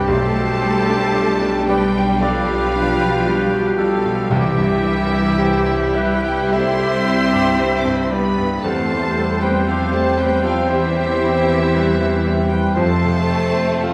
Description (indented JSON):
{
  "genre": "classical, romantic movement for piano and orchestra",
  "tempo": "57 BPM",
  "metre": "4/4",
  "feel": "rubato",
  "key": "C major",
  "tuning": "A4 = 440 Hz",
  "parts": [
    { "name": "bright concert grand piano", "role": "melody", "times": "0.0-13.9 s", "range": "B1 to G5", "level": "-23 LUFS", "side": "equal", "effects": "none" },
    { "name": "warm studio violin section", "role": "melody", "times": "0.0-13.9 s", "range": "E5 to D6", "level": "-30 LUFS", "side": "equal", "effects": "none" },
    { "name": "bright silver concert flute", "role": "second line", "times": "0.0-13.9 s", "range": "G4 to E5", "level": "-29 LUFS", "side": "equal", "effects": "none" },
    { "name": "clear oboe", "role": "second line", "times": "0.0-13.2 s", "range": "G4 to C5", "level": "-31 LUFS", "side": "equal", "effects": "none" },
    { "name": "rich studio violin section", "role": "second line", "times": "0.0-13.9 s", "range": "G3 to E4", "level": "-30 LUFS", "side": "equal", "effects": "none" },
    { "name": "warm clarinet", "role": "second line", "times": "0.0-13.9 s", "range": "F4 to E5", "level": "-31 LUFS", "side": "equal", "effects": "none" },
    { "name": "dark bassoon", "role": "accompaniment", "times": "0.0-13.2 s", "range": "F3 to G3", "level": "-28 LUFS", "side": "equal", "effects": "none" },
    { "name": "rich studio viola section", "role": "accompaniment", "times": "0.0-13.9 s", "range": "E4 to C5", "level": "-28 LUFS", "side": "equal", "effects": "none" },
    { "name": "rich studio double bass section", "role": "bass", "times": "0.0-13.9 s", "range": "B1 to F2", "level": "-27 LUFS", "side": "equal", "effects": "none" },
    { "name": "warm studio cello section", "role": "bass", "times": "0.0-13.9 s", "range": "E3 to C4", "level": "-26 LUFS", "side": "equal", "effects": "none" },
    { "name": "mellow French horn section", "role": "sustained chords", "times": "0.1-13.2 s", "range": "G3 to G4", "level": "-30 LUFS", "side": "equal", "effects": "none" },
    { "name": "timpani", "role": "percussion", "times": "4.3-5.9 s", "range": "C3", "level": "-26 LUFS", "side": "equal", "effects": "none" }
  ],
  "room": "wet recital hall reverb, RT60 1.5 s",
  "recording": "heard from further back in the room",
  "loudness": "-17 LUFS",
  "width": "mono",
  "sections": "0.0-13.9 A section",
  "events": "none",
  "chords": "0.1 G7/B; 4.3 C; 8.6 C/E; 12.8 F",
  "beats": "| 0.07 1.14 2.19 3.26 | 4.30 5.38 6.54 7.60 | 8.64 9.67 10.70 11.72 | 12.75 13.82"
}